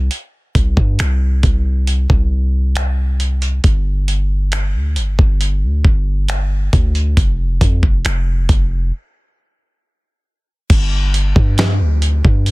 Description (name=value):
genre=contemporary R&B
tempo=68 BPM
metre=4/4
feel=straight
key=unclear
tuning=A4 = 439 Hz
part: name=warm 808-style bass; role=bass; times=0.0-12.5 s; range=F1 to G2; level=-15 LUFS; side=equal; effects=none
part: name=dusty soul sampler-style drum kit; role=drums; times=0.1-12.5 s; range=crash cymbal, finger snaps, hi-hat, kick drum, snare drum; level=-15 LUFS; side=equal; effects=soft clipping on snare
room=little or no reverb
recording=dense, heavily limited modern master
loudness=-13 LUFS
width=side -23 dB against mid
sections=0.0-10.7 A section; 10.7-12.5 B section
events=break 8.9-10.7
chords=none